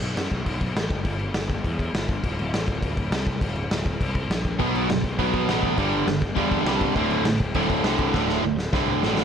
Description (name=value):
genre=punk rock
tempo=203 BPM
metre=4/4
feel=straight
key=D mixolydian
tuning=A4 = 440 Hz
part: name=fuzz picked electric bass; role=bass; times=0.0-9.2 s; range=D1 to F#2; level=-29 LUFS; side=left 1 dB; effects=overdrive
part: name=raw garage drum kit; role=drums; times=0.0-9.2 s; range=crash cymbal, kick drum, snare drum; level=-26 LUFS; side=left 1 dB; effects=none
part: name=cranked stack guitar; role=riff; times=4.6-9.2 s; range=D2 to B3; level=-26 LUFS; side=left 14 dB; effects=overdrive
part: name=overdriven electric guitar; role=riff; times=4.6-9.2 s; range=D2 to B3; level=-24 LUFS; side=right 13 dB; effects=none
room=little or no reverb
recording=none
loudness=-21 LUFS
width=side -8 dB against mid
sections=0.0-9.2 A section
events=drum fill 8.1-9.2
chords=0.0 B5; 1.0 Em/G; 2.2 D5; 4.6 B5; 5.8 G5; 7.0 D5